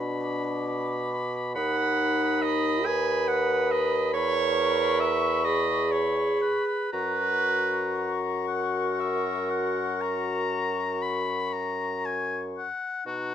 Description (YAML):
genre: classical, slow romantic movement for wind quintet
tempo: 38-47 BPM (dotted quarters)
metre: 12/8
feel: rubato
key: unclear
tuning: A4 = 440 Hz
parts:
  - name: clear oboe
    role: second line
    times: 0.0-13.3 s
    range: F#4 to B5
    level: -32 LUFS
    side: left 4 dB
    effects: none
  - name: bright clarinet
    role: accompaniment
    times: 0.0-13.3 s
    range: D#4 to G#5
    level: -29 LUFS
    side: right 5 dB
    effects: none
  - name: mellow French horn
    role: accompaniment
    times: 0.0-13.3 s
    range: D4 to B4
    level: -30 LUFS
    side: left 1 dB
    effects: none
  - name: warm bassoon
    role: bass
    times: 0.0-13.3 s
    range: D#2 to B2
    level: -30 LUFS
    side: right 2 dB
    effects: none
  - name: silver concert flute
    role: melody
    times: 0.2-13.3 s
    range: A#5 to D#6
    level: -34 LUFS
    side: left 10 dB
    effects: none
room: light reverb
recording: none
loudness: -24 LUFS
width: side -9 dB against mid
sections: 0.0-13.1 A section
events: none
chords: 0.0 Bm; 1.6 B/D#; 4.1 C#m7/E; 6.9 F#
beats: 0.24 | 1.56 2.85 4.14 5.45 | 6.94 8.48 10.02 11.54 | 13.06